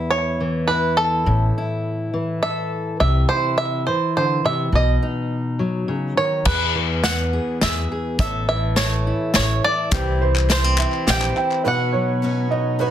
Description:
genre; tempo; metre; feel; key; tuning
indie folk with a building arrangement; 104 BPM; 3/4; straight; unclear; A4 = 438 Hz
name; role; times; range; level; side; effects
bluegrass banjo; melody; 0.0-12.8 s; A4 to G5; -22 LUFS; right 2 dB; slapback echo, plate reverb
fingerpicked steel-string acoustic guitar; accompaniment; 0.0-12.9 s; E2 to A4; -23 LUFS; left 2 dB; none
upright bass; bass; 1.3-11.3 s; A1 to E2; -21 LUFS; equal; none
unplugged drum kit; drums; 6.5-11.2 s; crash cymbal, hi-hat, kick drum, snare drum; -21 LUFS; left 1 dB; none
picked twelve-string acoustic guitar; accompaniment; 9.9-12.9 s; C3 to C#5; -29 LUFS; left 6 dB; plate reverb
dark upright piano; arpeggios; 9.9-12.9 s; G4 to G5; -24 LUFS; right 8 dB; plate reverb
group handclap; percussion; 9.9-11.6 s; none; -28 LUFS; left 7 dB; none
room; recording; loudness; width
moderate large studio reverb, RT60 0.8 s; dense, heavily limited modern master; -18 LUFS; side -10 dB against mid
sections
0.0-6.5 A section; 6.5-12.9 B section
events
none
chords
0.0 Aadd9/E; 1.3 A5; 3.0 C; 4.7 Badd9; 6.5 E; 8.2 A; 9.9 C; 11.6 Badd9

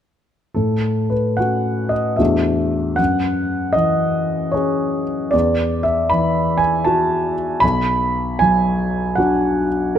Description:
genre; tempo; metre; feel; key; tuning
classical, impressionist solo piano; 77 BPM; 3/4; uneven beats, rubato; A major; A4 = 440 Hz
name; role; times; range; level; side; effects
clear grand piano; solo; 0.5-10.0 s; B1 to B5; -16 LUFS; equal; none
room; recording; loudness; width
light reverb; close, detailed microphones; -16 LUFS; side -9 dB against mid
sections
0.6-10.0 A section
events
none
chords
0.6 A6; 2.2 E11; 3.0 F#sus2; 5.3 Esus24; 7.6 Bm

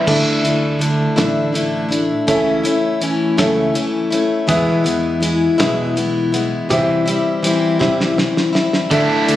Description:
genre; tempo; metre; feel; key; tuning
folk rock and heartland rock; 54 BPM (dotted quarters); 6/8; straight; unclear; A4 = 440 Hz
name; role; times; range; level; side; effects
picked plugged-in steel-string acoustic guitar; accompaniment; 0.0-9.4 s; E2 to E4; -16 LUFS; left 2 dB; none
biting overdriven guitar; riff; 0.0-0.1, 8.9-9.4 s; D3 to E4; -19 LUFS; right 2 dB; none
warm grand piano; accompaniment; 0.1-9.4 s; G4 to E5; -22 LUFS; right 2 dB; none
picked electric bass; bass; 0.1-9.4 s; A1 to E2; -23 LUFS; right 2 dB; none
cloth-damped thuddy drum kit; drums; 0.1-9.4 s; crash cymbal, hi-hat, kick drum, snare drum; -21 LUFS; right 1 dB; none
room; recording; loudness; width
light reverb, studio ambience; recorded on a phone in the room, studio reverb; -14 LUFS; side -13 dB against mid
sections
0.1-9.4 A section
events
drum fill 7.8-8.9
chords
0.1 Dsus2; 2.3 A/C#; 4.5 E; 6.7 C

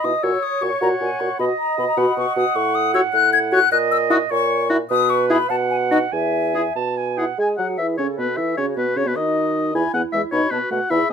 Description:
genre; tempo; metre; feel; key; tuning
quick classical-period movement for wind quintet; 102 BPM (dotted quarters); 6/8; rubato; E major; A4 = 440 Hz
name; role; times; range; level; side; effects
mellow hollow silver concert flute; melody; 0.0-11.1 s; B4 to G#6; -22 LUFS; left 9 dB; none
warm oboe; second line; 0.0-11.1 s; F#4 to G#5; -24 LUFS; left 3 dB; none
warm French horn; accompaniment; 0.0-11.1 s; G#3 to G#4; -23 LUFS; equal; none
warm clarinet; accompaniment; 0.0-11.1 s; E4 to A5; -25 LUFS; right 9 dB; none
dark bassoon; bass; 0.0-11.1 s; E2 to G#3; -24 LUFS; right 1 dB; none
room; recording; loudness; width
light reverb; none; -17 LUFS; side -7 dB against mid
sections
0.0-7.4 A section; 7.4-11.1 B section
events
none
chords
0.2 F#/A#; 1.4 B; 2.6 F#m/A; 3.7 F#7/A# (rootless); 4.9 N.C.; 5.5 B5; 6.1 E; 8.0 B9sus4; 8.6 B; 9.7 E; 10.3 B7

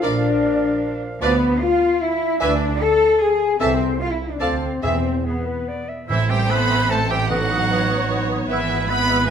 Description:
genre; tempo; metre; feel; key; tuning
quick classical-period movement for symphony orchestra; 150 BPM; 3/4; rubato; A minor; A4 = 440 Hz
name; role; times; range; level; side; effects
rich studio violin section; melody; 0.0-9.3 s; E5 to B5; -25 LUFS; equal; none
bright oboe; second line; 0.0-9.3 s; E4 to F5; -27 LUFS; right 3 dB; none
mellow flute section; second line; 0.0-9.2 s; B4 to E6; -29 LUFS; right 3 dB; none
rich studio violin section; second line; 0.0-9.3 s; B3 to F5; -30 LUFS; left 1 dB; none
warm clarinet; second line; 0.0-9.2 s; G#4 to E5; -30 LUFS; left 1 dB; none
mellow bassoon; accompaniment; 0.0-9.2 s; E3 to B3; -30 LUFS; right 4 dB; none
warm studio viola section; accompaniment; 0.0-9.3 s; G#4 to C#5; -29 LUFS; right 2 dB; none
dark French horn section; sustained chords; 0.0-9.3 s; B3 to A4; -22 LUFS; left 5 dB; none
warm studio cello section; bass; 0.0-9.3 s; E3 to A4; -28 LUFS; right 3 dB; none
warm studio double bass section; bass; 0.0-9.3 s; G#1 to E2; -26 LUFS; right 4 dB; none
timpani; percussion; 4.8-7.9 s; E2 to A2; -27 LUFS; right 1 dB; none
room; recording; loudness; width
wet recital hall reverb, RT60 1.4 s; none; -17 LUFS; side -8 dB against mid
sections
0.0-6.1 A section; 6.1-9.3 B section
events
none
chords
0.0 Bb; 1.2 Bdim/D; 2.4 E7/D; 3.6 Am/C; 4.4 Dm; 4.8 E; 6.1 Am; 7.3 B7/A; 8.5 E/G#

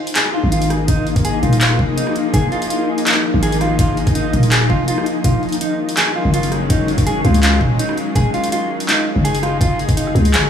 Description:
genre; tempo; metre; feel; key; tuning
half-time drum and bass; 165 BPM; 4/4; swing 53% on 16ths, half-time; F phrygian; A4 = 441 Hz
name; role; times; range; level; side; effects
bowed-like drone; sustained chords; 0.1-10.5 s; Eb3 to Ab4; -23 LUFS; left 2 dB; built-in reverb, sidechain pumping
flickering grainy texture; texture; 0.0-10.5 s; Eb4; -25 LUFS; left 3 dB; built-in reverb
drum and bass drum kit; drums; 0.1-10.5 s; handclaps, hi-hat, rim click; -21 LUFS; equal; overdrive
mellow electric guitar; arpeggios; 0.2-10.5 s; Eb4 to Ab4; -22 LUFS; right 1 dB; vintage 12-bit sampler grit, dub echo
growling 808-style bass; bass; 0.4-10.5 s; Eb1 to Db2; -17 LUFS; equal; none
electronic kick drum; drums; 0.9-10.0 s; none; -18 LUFS; equal; overdrive
room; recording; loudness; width
light reverb; studio reverb; -14 LUFS; side -8 dB against mid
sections
0.0-10.5 A section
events
none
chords
0.0 Fm; 5.2 Ebm

